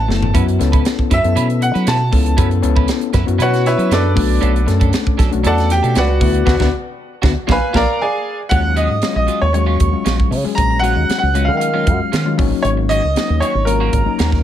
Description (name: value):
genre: electric jazz fusion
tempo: 117 BPM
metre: 4/4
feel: straight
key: Eb minor from 8.5 s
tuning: A4 = 439 Hz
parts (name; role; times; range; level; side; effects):
- bright baby grand piano; melody; 0.0-14.4 s; D4 to B5; -19 LUFS; equal; tape echo
- fingered electric bass with an envelope filter; bass; 0.0-14.4 s; F#1 to F#3; -17 LUFS; right 1 dB; none
- overdriven reed electric piano; accompaniment; 0.1-14.4 s; Gb3 to A4; -21 LUFS; left 10 dB; spring reverb
- clean electric guitar; stabs; 0.1-14.4 s; Eb3 to B4; -27 LUFS; right 7 dB; lush chorus
- crisp fusion drum kit; drums; 0.1-14.4 s; hi-hat, kick drum, snare drum, toms; -19 LUFS; right 1 dB; none
- silver concert flute; second line; 8.5-14.4 s; Bb5 to Bb6; -24 LUFS; right 5 dB; none
room: light reverb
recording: none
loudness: -13 LUFS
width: side -11 dB against mid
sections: 0.0-8.5 A section; 8.5-14.4 B section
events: grand piano solo 0.0-8.5; drum fill 0.1; band accent 6.5-8.5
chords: 0.3 F#7sus4; 4.2 Bm9; 6.2 D69; 7.5 A#7b9; 8.5 Ebm11; 12.4 Ab9sus4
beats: | 0.34 0.85 1.36 1.87 | 2.38 2.89 3.40 3.91 | 4.42 4.93 5.44 5.95 | 6.47 6.98 7.49 8.00 | 8.52 9.03 9.55 10.06 | 10.58 11.09 11.61 12.12 | 12.64 13.15 13.67 14.19